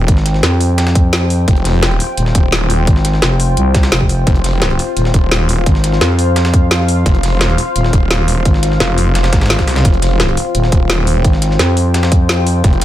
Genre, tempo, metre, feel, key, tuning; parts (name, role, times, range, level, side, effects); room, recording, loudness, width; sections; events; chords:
dark technical drum and bass; 172 BPM; 4/4; straight; F minor; A4 = 440 Hz
deep dark ambient pad; sustained chords; 0.0-12.8 s; F4 to G5; -20 LUFS; left 2 dB; chorus, built-in reverb, sidechain pumping
snarling distorted saw bass; bass; 0.0-12.8 s; Eb1 to C2; -14 LUFS; equal; distortion, overdrive, sidechain pumping
growling FM bass; bass; 0.1-12.6 s; Eb1 to F2; -13 LUFS; equal
breakbeat sampler-style drum kit; drums; 0.1-12.8 s; hi-hat, snare drum; -25 LUFS; equal; high-pass filter on hats, high-pass filter on snare
drum and bass drum kit; drums; 0.1-12.8 s; hi-hat, snare drum; -17 LUFS; equal
electronic kick drum; drums; 0.1-12.7 s; -12 LUFS; equal
little or no reverb; -10 LUFS; side -13 dB against mid
0.0-12.8 A section
0.0 Fmadd9